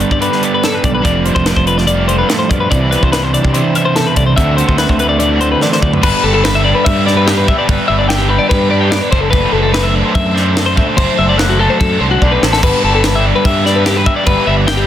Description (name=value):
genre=math rock and midwest emo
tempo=146 BPM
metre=4/4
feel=straight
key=G major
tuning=A4 = 440 Hz
part: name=twelve-string electric guitar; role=accompaniment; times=0.0-6.0 s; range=F2 to E4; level=-19 LUFS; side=right 7 dB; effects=none
part: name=twelve-string electric guitar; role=arpeggios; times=0.0-14.9 s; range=F#4 to G5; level=-15 LUFS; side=left 4 dB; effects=spring reverb
part: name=crunchy overdriven guitar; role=riff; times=0.0-14.9 s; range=C3 to C5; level=-17 LUFS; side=right 2 dB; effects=harmonic tremolo
part: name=growling fingered electric bass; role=bass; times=0.0-14.9 s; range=F1 to C3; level=-16 LUFS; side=equal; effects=overdrive
part: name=crisp fusion drum kit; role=drums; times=0.0-14.8 s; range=crash cymbal, hi-hat, kick drum, snare drum, toms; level=-16 LUFS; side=equal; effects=none
room=light reverb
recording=dense, heavily limited modern master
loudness=-10 LUFS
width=side -11 dB against mid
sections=0.0-6.0 A section; 6.0-14.9 B section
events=drum fill 5.6-6.0, 12.2-12.6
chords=0.0 G; 1.1 F69; 2.7 Cmaj9; 4.4 D13; 6.0 G; 9.1 D7/F#; 12.6 G